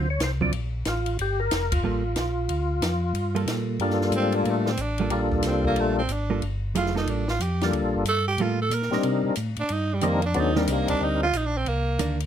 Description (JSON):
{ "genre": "soul jazz organ trio", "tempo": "183 BPM", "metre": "4/4", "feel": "swing 63% on 8ths", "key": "G minor", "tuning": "A4 = 440 Hz", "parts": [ { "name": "percussive tonewheel organ", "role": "melody", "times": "0.0-11.3 s", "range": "F#3 to D5", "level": "-25 LUFS", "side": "left 2 dB", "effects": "slow rotary speaker, overdrive, chorus vibrato" }, { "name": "hollow-body jazz guitar", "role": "accompaniment", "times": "0.0-12.2 s", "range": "D3 to A4", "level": "-28 LUFS", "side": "right 5 dB", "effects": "none" }, { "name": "mellow tonewheel organ", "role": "bass", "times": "0.0-12.3 s", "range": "F1 to C3", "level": "-27 LUFS", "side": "equal", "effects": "chorus vibrato, slow rotary speaker" }, { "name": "compact cocktail drum kit", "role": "drums", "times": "0.2-12.3 s", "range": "hi-hat, kick drum, ride cymbal, snare drum", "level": "-33 LUFS", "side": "equal", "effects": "none" }, { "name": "growling tenor saxophone", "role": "melody", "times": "4.2-12.2 s", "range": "G3 to Bb4", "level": "-27 LUFS", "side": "right 4 dB", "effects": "none" } ], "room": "light reverb", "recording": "close, detailed microphones", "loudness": "-22 LUFS", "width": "side -9 dB against mid", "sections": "0.0-3.8 A section; 3.8-12.3 B section", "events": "band accent 1.7; tenor saxophone solo 3.8-12.3", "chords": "0.0 Dm7; 1.2 Gm9; 9.0 Cm9" }